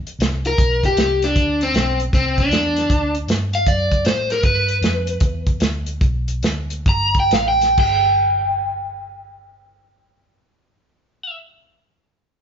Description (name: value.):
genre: electric blues shuffle.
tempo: 125-156 BPM.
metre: 4/4.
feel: swing 65% on 8ths.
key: G mixolydian.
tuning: A4 = 440 Hz.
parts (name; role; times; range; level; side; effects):
vintage muted fingered electric bass; bass; 0.0-11.3 s; G1 to A2; -24 LUFS; equal; none.
warm soul drum kit; drums; 0.1-7.9 s; china cymbal, hi-hat, kick drum, snare drum; -20 LUFS; equal; none.
overdriven semi-hollow guitar; melody; 0.5-11.4 s; C4 to Bb5; -18 LUFS; equal; none.
room: moderate large studio reverb, RT60 1.0 s.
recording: band playing live in one room, nothing above 7.5 kHz.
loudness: -16 LUFS.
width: side -7 dB against mid.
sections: 0.0-7.8 A section; 7.8-11.6 B section.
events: slowing down 4.4-7.8.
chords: 0.0 G; 1.4 D7; 4.4 G7; 7.8 N.C..